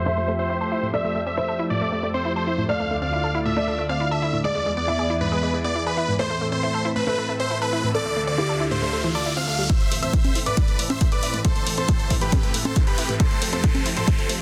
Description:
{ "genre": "uplifting trance", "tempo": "137 BPM", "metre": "4/4", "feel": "straight", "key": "A minor", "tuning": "A4 = 440 Hz", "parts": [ { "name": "big supersaw lead", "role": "melody", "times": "0.0-14.3 s", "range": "G4 to F5", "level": "-29 LUFS", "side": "equal", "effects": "sidechain pumping, low-pass filter, tape echo" }, { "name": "lush unison pad", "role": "sustained chords", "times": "0.0-14.4 s", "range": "D2 to E5", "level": "-30 LUFS", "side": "equal", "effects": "chorus, sidechain pumping" }, { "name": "analog pluck", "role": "arpeggios", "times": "0.0-14.4 s", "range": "G#2 to A4", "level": "-31 LUFS", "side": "equal", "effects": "chorus, sidechain pumping" }, { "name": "felt-muted upright piano", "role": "second line", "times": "0.1-9.6 s", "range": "G4 to E5", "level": "-32 LUFS", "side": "equal", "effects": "tape echo" }, { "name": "riser", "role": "sound effects", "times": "7.7-14.4 s", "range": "none", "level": "-36 LUFS", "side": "equal", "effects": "none" }, { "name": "warm concert grand piano", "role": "second line", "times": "9.7-14.3 s", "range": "B5 to E6", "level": "-36 LUFS", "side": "equal", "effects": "vintage 12-bit sampler grit, sidechain pumping" }, { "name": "electronic hi-hat and congas", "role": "drums", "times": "9.7-14.4 s", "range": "none", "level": "-30 LUFS", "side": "equal", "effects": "sidechain pumping on hats, sidechain pumping on perc" }, { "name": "electronic kick drum", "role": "drums", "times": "9.7-14.2 s", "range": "none", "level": "-23 LUFS", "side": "equal", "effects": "none" } ], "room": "light reverb", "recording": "dense, heavily limited modern master, low-pass filter", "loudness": "-23 LUFS", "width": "mono", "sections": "0.0-9.7 A section; 9.7-14.4 B section", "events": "filter sweep on supersaw synth 0.0-9.7; filter sweep 0.0-9.7; riser 7.7-9.7, 9.7-14.4; build-up 9.7-14.4; filter sweep on synth arpeggio sound 9.7-14.4", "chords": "0.0 Fmaj7; 2.7 Dmadd9; 4.4 E7; 6.2 Am; 7.9 Dmadd9; 9.7 Am; 13.2 Fmaj7" }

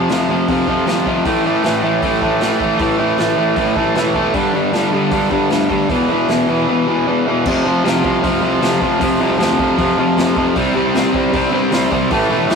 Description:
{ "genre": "punk rock", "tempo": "155 BPM", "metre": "4/4", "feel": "straight", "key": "unclear", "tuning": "A4 = 440 Hz", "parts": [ { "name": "cranked stack guitar", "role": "riff", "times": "0.0-12.6 s", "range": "E2 to C4", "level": "-17 LUFS", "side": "right 4 dB", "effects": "overdrive" }, { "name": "distorted electric guitar", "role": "riff", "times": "0.0-12.6 s", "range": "E2 to C4", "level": "-17 LUFS", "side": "left 5 dB", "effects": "distortion" }, { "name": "fuzz picked electric bass", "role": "bass", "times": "0.0-12.6 s", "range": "E1 to G2", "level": "-27 LUFS", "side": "equal", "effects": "overdrive" }, { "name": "raw garage drum kit", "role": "drums", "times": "0.1-12.6 s", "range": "crash cymbal, hi-hat, kick drum, snare drum", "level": "-25 LUFS", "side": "equal", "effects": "none" } ], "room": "light reverb", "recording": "rough rehearsal-room recording, warm saturation", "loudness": "-13 LUFS", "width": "side -5 dB against mid", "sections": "0.0-7.5 A section; 7.5-12.6 B section", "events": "none", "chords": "0.0 F5; 1.2 A5; 4.3 G5; 5.9 E5; 7.5 F5; 10.6 C5" }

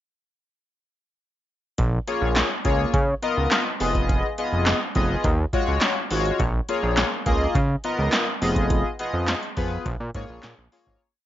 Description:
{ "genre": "early-eighties boogie funk", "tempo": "104 BPM", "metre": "4/4", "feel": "straight", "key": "unclear", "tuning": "A4 = 441 Hz", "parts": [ { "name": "fat analog bass", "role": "bass", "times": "1.8-11.0 s", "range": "F1 to Db3", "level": "-24 LUFS", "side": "right 1 dB", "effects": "none" }, { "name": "electro analog drum machine", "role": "drums", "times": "1.8-11.0 s", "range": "handclaps, hi-hat, kick drum, snare drum", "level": "-24 LUFS", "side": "right 1 dB", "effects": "none" }, { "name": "chorused polysynth", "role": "accompaniment", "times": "2.1-11.0 s", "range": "Ab3 to Eb5", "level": "-25 LUFS", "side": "left 2 dB", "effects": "none" } ], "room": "little or no reverb", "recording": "nothing above 7.5 kHz", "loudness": "-20 LUFS", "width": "side -12 dB against mid", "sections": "1.8-11.0 verse", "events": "fade-out 8.7-11.0", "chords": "1.8 Bbm7; 2.9 Db13; 3.8 Fm7b5; 5.2 Ebm11; 6.4 Bbm7; 7.6 Db13; 8.4 Fm7b5; 9.9 Bbm7" }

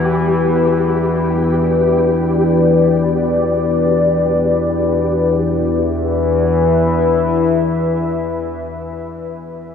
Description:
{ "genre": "dark ambient drone", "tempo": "free time", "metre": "none", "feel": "none", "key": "unclear", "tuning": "A4 = 440 Hz", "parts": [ { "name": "deep dark ambient pad", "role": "sustained chords", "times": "0.0-9.2 s", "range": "B3 to E5", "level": "-16 LUFS", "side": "left 2 dB", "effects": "chorus, built-in reverb" }, { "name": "analog drone", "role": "drone", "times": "0.0-8.9 s", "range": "E2 to E3", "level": "-17 LUFS", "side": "left 2 dB", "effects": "chorus" }, { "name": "flickering grainy texture", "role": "texture", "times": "0.0-5.5 s", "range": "G4", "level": "-24 LUFS", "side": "left 2 dB", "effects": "built-in reverb, ensemble chorus" } ], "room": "wet huge ambient reverb, RT60 8.2 s", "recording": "dreamy mix soaked in reverb, small room ambience", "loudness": "-13 LUFS", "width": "side -7 dB against mid", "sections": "0.0-5.4 A section; 5.4-9.7 B section", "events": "none", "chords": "0.0 Em; 5.4 E5" }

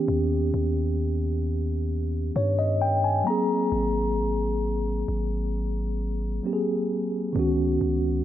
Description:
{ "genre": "contemporary R&B", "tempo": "66 BPM", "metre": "4/4", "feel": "straight", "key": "unclear", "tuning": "A4 = 445 Hz", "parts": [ { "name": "mellow tine electric piano", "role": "accompaniment", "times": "0.0-8.2 s", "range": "D#3 to A#5", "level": "-25 LUFS", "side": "equal", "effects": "medium stereo tremolo" }, { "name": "long sustained 808-style bass", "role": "bass", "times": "0.1-8.2 s", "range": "G#1 to G2", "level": "-27 LUFS", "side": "equal", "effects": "none" } ], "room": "moderate lush hall reverb, RT60 2.6 s", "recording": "none", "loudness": "-23 LUFS", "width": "side -12 dB against mid", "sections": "0.0-8.2 A section", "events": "tine electric piano fill 1.9-3.7", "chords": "0.0 D#7b13; 3.3 G#9; 7.4 C#9sus4" }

